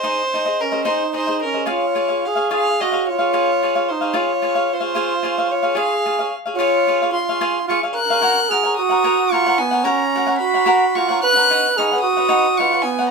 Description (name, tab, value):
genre	mexican folk, mariachi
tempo	74 BPM (dotted quarters)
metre	6/8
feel	straight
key	Db major, F# major from 8.2 s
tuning	A4 = 440 Hz
part	rich violin	melody	0.0-13.1 s	Bb4 to Gb6	-20 LUFS	left 3 dB	none
part	cavaquinho	accompaniment	0.0-13.1 s	Eb4 to F#5	-21 LUFS	left 2 dB	none
part	mellow trumpet	second line	0.6-13.1 s	B3 to B4	-20 LUFS	right 6 dB	none
room	wet studio reverb, RT60 0.6 s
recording	band playing live in one room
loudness	-16 LUFS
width	side -4 dB against mid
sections	0.0-8.2 A section; 8.2-13.1 B section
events	none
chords	0.0 Ab; 1.7 Db; 8.2 F#; 11.5 Badd9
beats	| 0.04 0.85 | 1.67 2.49 | 3.31 4.12 | 4.94 5.75 | 6.57 7.39 | 8.21 9.03 | 9.85 10.66 | 11.47 12.29 | 13.10